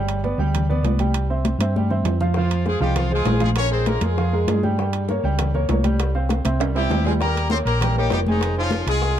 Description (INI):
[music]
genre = latin, salsa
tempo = 198 BPM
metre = 4/4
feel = straight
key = F minor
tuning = A4 = 440 Hz
[part]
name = clear baby grand piano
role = accompaniment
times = 0.0-9.2 s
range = F3 to Ab5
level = -25 LUFS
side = right 2 dB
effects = none
[part]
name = hollow-body short-scale fingered electric bass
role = bass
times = 0.0-9.2 s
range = F1 to G2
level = -22 LUFS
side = equal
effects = none
[part]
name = congas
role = percussion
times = 0.1-9.2 s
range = none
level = -26 LUFS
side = left 2 dB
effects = none
[part]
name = timbales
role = percussion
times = 0.1-9.0 s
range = none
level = -29 LUFS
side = right 8 dB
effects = none
[part]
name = bongos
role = percussion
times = 2.3-9.2 s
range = none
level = -32 LUFS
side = left 8 dB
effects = none
[part]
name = brilliant horn section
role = melody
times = 2.4-4.6, 6.8-9.2 s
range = Eb3 to Db5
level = -25 LUFS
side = left 2 dB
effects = none
[sound]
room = little or no reverb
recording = dark, warm production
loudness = -18 LUFS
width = side -10 dB against mid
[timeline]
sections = 0.0-7.2 A section; 7.2-9.2 B section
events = drum fill 1.8-2.4, 6.6-7.2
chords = 0.0 G; 1.1 C; 2.4 Fm; 3.6 Bb5; 4.8 Gdim; 6.0 Csus4; 6.6 C; 7.2 Eb7; 8.4 Fm7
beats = 0.23 0.54 0.84 | 1.15 1.45 1.75 2.06 | 2.36 2.66 2.97 3.27 | 3.57 3.88 4.18 4.48 | 4.79 5.09 5.39 5.70 | 6.00 6.30 6.61 6.91 | 7.21 7.51 7.82 8.12 | 8.42 8.73 9.03